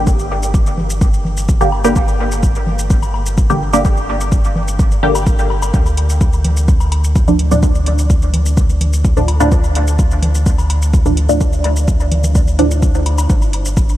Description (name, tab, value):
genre	dub techno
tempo	127 BPM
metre	4/4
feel	straight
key	unclear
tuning	A4 = 440 Hz
part	filtered dub chord stab	stabs	0.0-13.3 s	A2 to G4	-19 LUFS	equal	phaser, vintage 12-bit sampler grit, sidechain pumping, dub echo
part	warm sub bass	bass	0.0-14.0 s	G1 to D2	-16 LUFS	equal	sidechain pumping
part	electronic kick drum	drums	0.1-13.9 s	none	-14 LUFS	equal	none
part	electronic shaker and hi-hat	drums	0.1-14.0 s	none	-28 LUFS	equal	none
part	congas and woodblock	percussion	0.8-13.3 s	none	-27 LUFS	left 2 dB	sidechain pumping on perc, dub echo
room	light reverb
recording	vinyl crackle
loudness	-12 LUFS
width	side -14 dB against mid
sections	0.0-14.0 A section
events	none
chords	0.0 Gm; 5.7 Dm; 13.3 N.C.